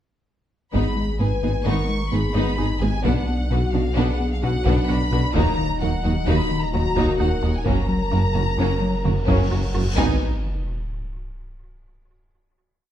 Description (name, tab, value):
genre	cinematic, hybrid orchestral and electronic film score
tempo	130 BPM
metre	5/4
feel	straight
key	G# minor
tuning	A4 = 440 Hz
part	warm symphonic violin section	melody	0.7-10.2 s	E#5 to C#6	-30 LUFS	left 2 dB	none
part	rich symphonic violin section	second line	0.7-10.2 s	A#3 to B4	-30 LUFS	left 3 dB	none
part	dark symphonic viola section	accompaniment	0.7-10.2 s	F#3 to D#4	-29 LUFS	right 1 dB	none
part	dark French horn section	sustained chords	0.7-10.2 s	D#3 to B4	-30 LUFS	left 2 dB	none
part	resonant blip pluck	arpeggios	0.7-9.9 s	D#3 to B4	-33 LUFS	right 4 dB	none
part	round analog bass	riff	0.7-9.9 s	D#2 to B3	-25 LUFS	left 2 dB	none
part	mellow tuba	bass	0.7-10.2 s	F#1 to D#2	-30 LUFS	right 4 dB	none
part	rich symphonic double bass section	bass	0.7-10.2 s	F#1 to D#2	-29 LUFS	right 3 dB	none
part	saturated sub bass	bass	0.7-10.2 s	D#1 to B1	-27 LUFS	equal	none
part	warm symphonic cello section	bass	0.7-10.2 s	D#2 to B2	-31 LUFS	right 2 dB	none
part	taiko ensemble	drums	0.7-10.9 s	none	-27 LUFS	equal	none
part	cymbal swell and sub drop	sound effects	9.2-12.3 s	none	-30 LUFS	equal	none
room	moderate recital hall reverb, RT60 1.5 s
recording	dark, warm production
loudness	-19 LUFS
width	side -11 dB against mid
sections	0.7-10.0 theme; 10.0-12.3 final chord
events	cymbal swell 9.2-10.0; impact 10.0-12.3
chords	0.7 G#m; 3.0 Bm; 5.4 D#m; 7.7 F#; 10.0 G#m